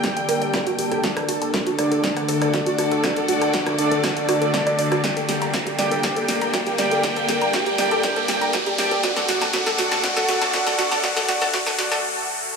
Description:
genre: melodic techno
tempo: 120 BPM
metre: 4/4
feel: straight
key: G harmonic minor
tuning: A4 = 444 Hz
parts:
  - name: evolving wavetable pad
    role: sustained chords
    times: 0.0-12.6 s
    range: D3 to A4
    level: -28 LUFS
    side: left 2 dB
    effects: phaser, built-in reverb, sidechain pumping
  - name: warbly dusty pluck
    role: arpeggios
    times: 0.0-12.0 s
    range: F#4 to Bb5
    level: -26 LUFS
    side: right 1 dB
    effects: chorus, sidechain pumping, digital delay
  - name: analog synth brass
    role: stabs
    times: 0.0-12.0 s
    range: D4 to G5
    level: -24 LUFS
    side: right 1 dB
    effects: chorus, sidechain pumping, digital delay
  - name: electronic kick drum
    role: drums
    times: 0.0-11.6 s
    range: none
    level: -30 LUFS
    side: equal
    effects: none
  - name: punchy analog drum machine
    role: drums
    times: 0.0-12.0 s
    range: hi-hat, rim click, snare drum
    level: -25 LUFS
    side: equal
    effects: high-pass filter on hats, high-pass filter on snare, high-pass filter on room
  - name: riser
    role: sound effects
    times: 1.0-12.6 s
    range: none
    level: -28 LUFS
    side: left 1 dB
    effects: none
  - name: warm studio string section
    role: texture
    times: 0.0-12.0 s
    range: Bb3 to G5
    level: -28 LUFS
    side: left 1 dB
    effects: sidechain pumping
room: moderate huge ambient reverb, RT60 4.1 s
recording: high-pass filter, studio reverb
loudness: -18 LUFS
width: side -5 dB against mid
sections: 0.0-12.6 A section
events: build-up 0.0-12.6; drum fill 0.0-12.0; filter sweep on synth arpeggio sound 0.0-12.6; filter sweep 0.0-12.6; riser 1.0-12.6; break 12.0-12.6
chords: 0.0 Gmadd9; 1.0 D; 5.0 Gmadd9; 9.0 D

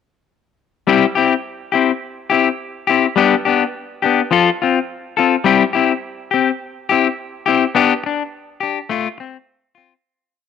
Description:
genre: highlife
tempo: 105 BPM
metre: 4/4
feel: straight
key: C major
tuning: A4 = 441 Hz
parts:
  - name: clean electric guitar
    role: solo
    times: 0.9-9.9 s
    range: F3 to A4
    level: -15 LUFS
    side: left 7 dB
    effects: none
room: moderate spring reverb, RT60 1.6 s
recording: none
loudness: -15 LUFS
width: side -7 dB against mid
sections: 0.9-10.0 groove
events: fade-out 7.8-10.0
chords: 0.9 C; 3.2 G; 4.3 F; 5.5 C; 7.8 G; 8.9 F

